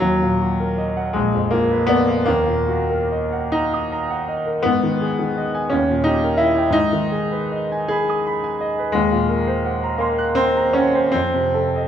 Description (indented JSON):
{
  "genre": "classical, romantic character piece for solo piano",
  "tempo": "45-59 BPM (dotted quarters)",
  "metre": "6/8",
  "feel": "rubato",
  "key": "Eb minor",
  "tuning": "A4 = 440 Hz",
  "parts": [
    { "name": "clear concert grand piano", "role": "solo", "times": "0.0-11.9 s", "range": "Bb1 to Gb6", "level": "-17 LUFS", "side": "equal", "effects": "none" }
  ],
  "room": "wet recital hall reverb, RT60 1.7 s",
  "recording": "minimal, uncompressed stereo recording",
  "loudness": "-17 LUFS",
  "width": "side -9 dB against mid",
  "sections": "0.0-11.9 A section",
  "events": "none",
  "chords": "0.0 Ebm; 1.1 Bb; 2.3 Ebm; 4.6 Abm; 5.7 Eb; 6.7 Abm; 9.0 Cm7b5/Eb; 11.1 F7"
}